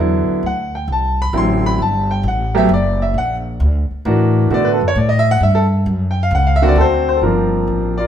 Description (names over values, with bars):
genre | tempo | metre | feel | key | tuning
jazz | 133 BPM | 3/4 | swing 68% on 8ths | unclear | A4 = 440 Hz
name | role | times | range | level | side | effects
clear concert grand piano | melody | 0.0-8.1 s | D3 to C6 | -16 LUFS | equal | none
upright bass | bass | 0.0-8.1 s | F#1 to B2 | -17 LUFS | left 1 dB | none
room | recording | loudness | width
moderate stone room reverb, RT60 1.3 s | band playing live in one room | -13 LUFS | side -9 dB against mid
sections
0.0-7.2 A section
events
grand piano solo 0.0-7.2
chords
0.4 D9; 1.8 Gmaj7sus2; 3.1 F#7alt; 4.5 Bm7; 5.9 F#5; 6.8 D7; 7.2 Gm11